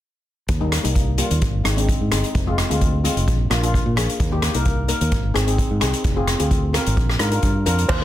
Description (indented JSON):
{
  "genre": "calypso",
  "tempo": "130 BPM",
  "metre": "4/4",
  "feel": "straight",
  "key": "Eb major",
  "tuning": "A4 = 440 Hz",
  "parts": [
    { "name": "fingered electric bass", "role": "bass", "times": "0.5-8.0 s", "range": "F1 to Bb2", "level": "-21 LUFS", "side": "equal", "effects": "none" },
    { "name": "street-band drum kit", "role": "drums", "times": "0.5-8.0 s", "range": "crash cymbal, hi-hat, kick drum, rim click", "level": "-21 LUFS", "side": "equal", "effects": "none" },
    { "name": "steel pan", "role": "accompaniment", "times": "0.6-8.0 s", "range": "G3 to Bb4", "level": "-24 LUFS", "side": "left 2 dB", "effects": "none" },
    { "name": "steel pan", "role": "melody", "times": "7.9-8.0 s", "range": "C5", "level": "-23 LUFS", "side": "right 1 dB", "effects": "none" },
    { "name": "cowbell", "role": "percussion", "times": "7.9-8.0 s", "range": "none", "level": "-25 LUFS", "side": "right 6 dB", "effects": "none" }
  ],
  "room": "light reverb",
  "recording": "dense, heavily limited modern master",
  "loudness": "-17 LUFS",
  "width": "side -13 dB against mid",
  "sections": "0.5-7.9 A section",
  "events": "none",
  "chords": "0.5 Eb; 1.4 Ab; 2.4 Fm; 3.3 Bb; 4.2 Eb; 5.1 Ab; 6.1 Fm; 7.0 Bb"
}